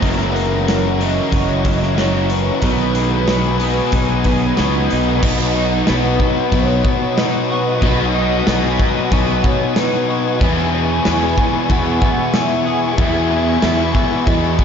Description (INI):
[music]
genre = rock, shoegaze and dream pop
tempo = 93 BPM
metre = 4/4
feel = straight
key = B major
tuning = A4 = 440 Hz
[part]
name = sweeping resonant pad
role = sustained chords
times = 0.0-14.6 s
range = B3 to D#6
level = -25 LUFS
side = equal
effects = chorus, phaser
[part]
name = twelve-string electric guitar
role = arpeggios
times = 0.0-14.6 s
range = D#3 to G#4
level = -27 LUFS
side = right 4 dB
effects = lush chorus, tape echo
[part]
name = biting overdriven guitar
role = riff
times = 0.0-14.6 s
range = E2 to B4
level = -21 LUFS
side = left 8 dB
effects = wide subtle chorus
[part]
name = crunchy overdriven guitar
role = riff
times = 0.0-5.2 s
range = F#2 to E4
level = -25 LUFS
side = right 8 dB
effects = reverse reverb
[part]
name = crunchy overdriven guitar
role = riff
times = 0.0-14.6 s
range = E2 to B3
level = -23 LUFS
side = left 2 dB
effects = analog chorus
[part]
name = sustaining fretless electric bass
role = bass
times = 0.0-14.6 s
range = F#1 to E2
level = -20 LUFS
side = equal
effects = lush chorus
[part]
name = gated 80s drum kit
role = drums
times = 0.0-14.6 s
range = crash cymbal, hi-hat, kick drum, snare drum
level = -20 LUFS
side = equal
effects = none
[part]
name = pure sine lead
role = melody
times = 0.3-14.6 s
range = A#4 to G#5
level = -24 LUFS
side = right 2 dB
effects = chorus, tremolo, tape echo
[sound]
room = moderate huge ambient reverb, RT60 6.2 s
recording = dreamy mix soaked in reverb, nothing above 7.5 kHz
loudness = -14 LUFS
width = side -7 dB against mid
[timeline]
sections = 0.0-5.2 A section; 5.2-14.6 B section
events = none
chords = 0.0 F#7; 2.6 B6; 5.2 B; 10.4 E6